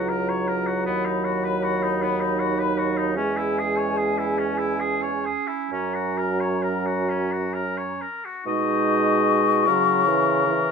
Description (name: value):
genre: classical, slow romantic movement for wind quintet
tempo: 42-53 BPM (dotted quarters)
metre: 6/8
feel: rubato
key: B major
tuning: A4 = 440 Hz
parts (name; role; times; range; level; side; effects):
- mellow hollow concert flute; melody; 0.0-10.7 s; G#5 to C#6; -26 LUFS; left 11 dB; none
- clear oboe; second line; 0.0-10.7 s; B3 to D#5; -28 LUFS; left 2 dB; none
- dark clarinet; accompaniment; 0.0-10.7 s; C#4 to E4; -29 LUFS; right 12 dB; none
- mellow French horn; accompaniment; 0.0-10.7 s; E3 to G#3; -27 LUFS; equal; none
- mellow bassoon; bass; 0.0-10.7 s; C#2 to C#3; -27 LUFS; right 3 dB; none
room: moderate large studio reverb, RT60 1.0 s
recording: minimal, uncompressed stereo recording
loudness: -21 LUFS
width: side -6 dB against mid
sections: 0.0-8.4 A section; 8.4-10.7 B section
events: none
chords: 0.0 F#7/C#; 0.9 B/D#; 3.2 C#m/E; 5.7 F#; 8.4 B; 9.7 F#7/C#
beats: | 0.87 2.01 | 3.17 4.39 | 5.70 7.08 | 8.45 9.66